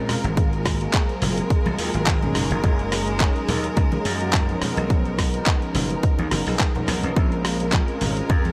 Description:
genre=nu-disco, nu disco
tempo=106 BPM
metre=4/4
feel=swing 55% on 16ths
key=unclear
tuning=A4 = 440 Hz
part: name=mellow synth brass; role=accompaniment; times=0.0-8.5 s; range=F3 to Bb4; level=-30 LUFS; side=equal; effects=chorus, sidechain pumping, dub echo
part: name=rich chamber string section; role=sustained chords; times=0.0-8.5 s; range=Ab3 to Bb4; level=-32 LUFS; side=equal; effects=sidechain pumping
part: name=slap bass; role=bass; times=0.0-8.5 s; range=Gb1 to Bb2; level=-28 LUFS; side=equal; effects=none
part: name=dusty soul sampler-style drum kit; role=drums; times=0.1-8.5 s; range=handclaps, hi-hat, rim click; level=-29 LUFS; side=equal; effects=none
part: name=congas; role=percussion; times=0.1-8.5 s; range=none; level=-33 LUFS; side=equal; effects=none
part: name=electronic kick drum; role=drums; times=0.4-8.4 s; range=none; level=-23 LUFS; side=equal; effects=overdrive
room=little or no reverb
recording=none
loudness=-22 LUFS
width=mono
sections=0.0-8.5 A section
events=none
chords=0.4 Ab13; 2.4 Gb69; 7.2 Bbm9

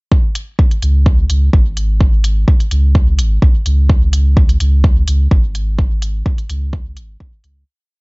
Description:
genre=dub techno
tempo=127 BPM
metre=4/4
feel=straight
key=unclear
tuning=A4 = 440 Hz
part: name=electronic kick drum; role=drums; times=0.1-7.3 s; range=none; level=-12 LUFS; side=equal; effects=studio ambience
part: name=electronic hi-hat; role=drums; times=0.4-7.5 s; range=none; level=-25 LUFS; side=equal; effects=studio ambience
part: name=pure sine sub bass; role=bass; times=0.8-7.6 s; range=G#1 to C#2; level=-13 LUFS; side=equal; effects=sidechain pumping
room=little or no reverb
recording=nothing above 7.6 kHz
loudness=-11 LUFS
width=side -32 dB against mid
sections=0.1-7.7 groove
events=fade-out 5.2-7.7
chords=none

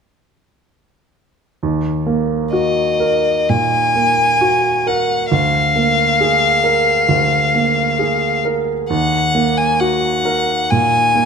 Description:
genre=classical, romantic duo for violin and grand piano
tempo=66 BPM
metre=4/4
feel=rubato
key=Eb minor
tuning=A4 = 438 Hz
part: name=bright grand piano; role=accompaniment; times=1.6-11.3 s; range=D2 to Bb4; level=-17 LUFS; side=right 3 dB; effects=none
part: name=rich violin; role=melody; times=2.5-11.3 s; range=Eb5 to Ab5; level=-15 LUFS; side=left 3 dB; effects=none
room=moderate recital hall reverb, RT60 1.5 s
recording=close, detailed microphones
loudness=-13 LUFS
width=side -6 dB against mid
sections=1.6-11.3 A section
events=none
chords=1.6 Ebm; 5.3 Bb7/D; 8.9 Ebm

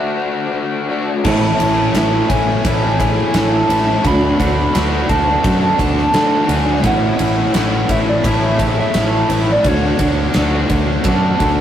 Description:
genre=rock, shoegaze and dream pop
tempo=86 BPM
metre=4/4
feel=straight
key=A major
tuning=A4 = 440 Hz
part: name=soft struck synth lead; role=melody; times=0.0-11.6 s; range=C#5 to B5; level=-21 LUFS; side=equal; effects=chorus
part: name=crunchy overdriven guitar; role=riff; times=0.0-11.6 s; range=A2 to F#4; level=-20 LUFS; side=left 4 dB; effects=none
part: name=picked twelve-string acoustic guitar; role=arpeggios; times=1.2-11.6 s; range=G#4 to C#5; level=-25 LUFS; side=right 4 dB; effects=none
part: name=overdriven semi-hollow guitar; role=riff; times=1.2-11.6 s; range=A2 to F#4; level=-21 LUFS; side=right 4 dB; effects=none
part: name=tight distorted guitar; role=riff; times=1.2-11.6 s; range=A2 to F#4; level=-26 LUFS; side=right 1 dB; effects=distortion
part: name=huge arena drum kit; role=drums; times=1.2-11.6 s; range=crash cymbal, kick drum, ride cymbal, snare drum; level=-20 LUFS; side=equal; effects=none
part: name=sustaining fretless electric bass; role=bass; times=1.3-11.6 s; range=A1 to D3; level=-19 LUFS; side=equal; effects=none
room=wet stone room reverb, RT60 1.2 s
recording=rough rehearsal-room recording, warm saturation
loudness=-13 LUFS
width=side -10 dB against mid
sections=0.0-11.6 A section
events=none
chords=0.0 Dadd9; 1.2 Amaj7; 4.0 Dmaj7; 6.8 Amaj7; 9.7 Dmaj7

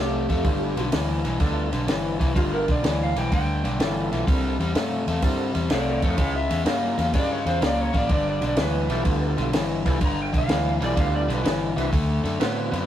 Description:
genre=electric blues shuffle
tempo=126 BPM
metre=4/4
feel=swing 68% on 8ths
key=G mixolydian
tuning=A4 = 441 Hz
part: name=electric slide guitar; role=melody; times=0.0-11.6 s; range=E4 to Bb5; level=-28 LUFS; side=right 2 dB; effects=none
part: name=overdriven electric guitar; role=riff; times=0.0-12.9 s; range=G2 to B3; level=-26 LUFS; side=left 3 dB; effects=none
part: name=vintage muted fingered electric bass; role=bass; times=0.0-12.9 s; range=G1 to A2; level=-27 LUFS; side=equal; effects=none
part: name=compact cocktail drum kit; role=drums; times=0.3-12.8 s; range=kick drum, ride cymbal, snare drum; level=-26 LUFS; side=equal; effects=none
part: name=overdriven tonewheel organ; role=accompaniment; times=0.4-12.9 s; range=A3 to B4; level=-32 LUFS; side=right 3 dB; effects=slow rotary speaker, chorus vibrato
room=light reverb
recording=rough rehearsal-room recording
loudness=-21 LUFS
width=side -11 dB against mid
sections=0.0-12.9 A section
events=electric slide guitar solo 0.0-12.9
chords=0.5 G13; 4.3 C13; 6.2 C#dim7; 8.1 G13; 11.9 D13

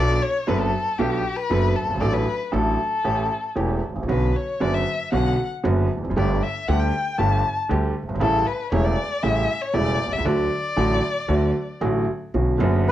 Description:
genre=tango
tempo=116 BPM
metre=4/4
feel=rubato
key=D major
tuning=A4 = 440 Hz
part: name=warm violin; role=second line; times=0.0-11.8 s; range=G4 to A5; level=-25 LUFS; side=left 4 dB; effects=none
part: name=clear baby grand piano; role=accompaniment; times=0.0-12.9 s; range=E1 to A4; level=-23 LUFS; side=right 1 dB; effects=none
part: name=upright bass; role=bass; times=0.0-12.9 s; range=E1 to D2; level=-24 LUFS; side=equal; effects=none
part: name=bandoneon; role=melody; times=12.9 s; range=B4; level=-18 LUFS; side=equal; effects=none
room=light reverb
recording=worn, warbling old tape, cassette tape, warbly pitch drift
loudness=-20 LUFS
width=side -12 dB against mid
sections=0.0-12.3 A section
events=violin solo 0.0-12.3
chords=0.0 Bm7; 2.0 D/A; 3.1 A7; 4.1 Bmadd9; 6.2 Gsus2; 8.2 A7; 10.3 D; 12.3 Bmadd9

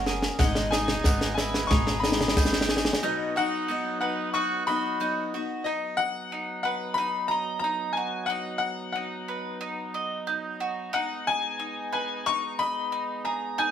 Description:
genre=indie folk with a building arrangement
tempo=91 BPM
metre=4/4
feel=straight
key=B major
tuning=A4 = 439 Hz
part: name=bright upright piano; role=melody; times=0.0-13.7 s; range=D#5 to C#6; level=-29 LUFS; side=left 3 dB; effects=none
part: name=picked steel-string acoustic guitar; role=accompaniment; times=0.0-5.7 s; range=G#2 to A#4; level=-32 LUFS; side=left 4 dB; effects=none
part: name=mellow brass ensemble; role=sustained chords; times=0.0-13.7 s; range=F#3 to D#5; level=-39 LUFS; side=equal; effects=none
part: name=bowl-back mandolin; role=arpeggios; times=0.0-13.7 s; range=B3 to F#5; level=-32 LUFS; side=right 4 dB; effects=none
part: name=upright bass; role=bass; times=0.0-2.9 s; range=F#1 to G#1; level=-32 LUFS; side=equal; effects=none
part: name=compact cocktail drum kit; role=drums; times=0.1-3.1 s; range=kick drum, snare drum, toms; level=-24 LUFS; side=equal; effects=none
part: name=clear trumpet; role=second line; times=0.4-5.3 s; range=B3 to G#4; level=-33 LUFS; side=right 4 dB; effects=none
part: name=tambourine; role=percussion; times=0.4-2.5 s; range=none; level=-43 LUFS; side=right 6 dB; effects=none
part: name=group handclap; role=percussion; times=1.1-2.5 s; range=none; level=-40 LUFS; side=left 5 dB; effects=none
room=moderate stone room reverb, RT60 1.0 s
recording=band playing live in one room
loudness=-25 LUFS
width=side -9 dB against mid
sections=0.0-5.7 A section; 5.7-13.7 B section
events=build-up 0.0-5.7; drum fill 0.0-3.0; break 3.0-5.7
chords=0.4 G#m; 3.0 B; 10.9 G#m

